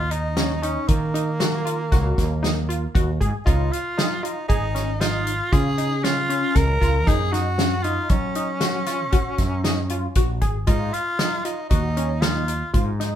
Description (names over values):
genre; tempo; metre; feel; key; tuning
progressive instrumental, band music in an uneven meter; 116 BPM; 7/4; straight; unclear; A4 = 439 Hz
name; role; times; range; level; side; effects
raspy tenor saxophone; melody; 0.0-12.7 s; A#3 to A#4; -26 LUFS; equal; none
fretless electric bass; bass; 0.0-13.2 s; G#1 to F#3; -24 LUFS; equal; none
tight sequenced synth; arpeggios; 0.1-13.2 s; C#4 to G#4; -28 LUFS; left 1 dB; chorus
natural country drum kit; drums; 0.1-13.1 s; hi-hat, kick drum, snare drum; -22 LUFS; equal; none
room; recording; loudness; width
moderate studio reverb, RT60 0.7 s; band playing live in one room; -19 LUFS; side -10 dB against mid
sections
0.0-13.2 A section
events
none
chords
0.0 D#m; 3.5 C#; 7.1 F#maj7(no3); 10.7 G#5